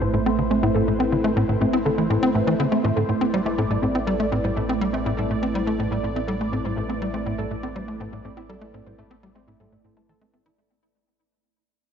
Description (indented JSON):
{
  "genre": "ambient, sequencer-driven space music",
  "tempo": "122 BPM",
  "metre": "4/4",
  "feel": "straight",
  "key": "A minor",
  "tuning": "A4 = 439 Hz",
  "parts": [
    { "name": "phased analog pad", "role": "sustained chords", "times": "0.0-10.6 s", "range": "A3 to D5", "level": "-26 LUFS", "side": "right 1 dB", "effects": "phaser, chorus" },
    { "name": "warbly dusty pluck", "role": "arpeggios", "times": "0.0-10.6 s", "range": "A3 to A5", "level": "-28 LUFS", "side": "right 2 dB", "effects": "chorus, auto-pan, tape echo" },
    { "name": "tight sequencer bass", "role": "riff", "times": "0.0-10.5 s", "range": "A2 to E4", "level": "-24 LUFS", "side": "left 1 dB", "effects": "analog chorus, tape echo" },
    { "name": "analog drone", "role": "bass", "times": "0.0-10.6 s", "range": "A1", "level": "-33 LUFS", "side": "left 1 dB", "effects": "chorus" }
  ],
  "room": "wet lush hall reverb, RT60 3.0 s",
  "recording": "nothing above 7.9 kHz",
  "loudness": "-20 LUFS",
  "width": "side -7 dB against mid",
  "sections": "0.0-10.6 A section",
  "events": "fade-out 2.7-10.6",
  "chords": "0.0 Am"
}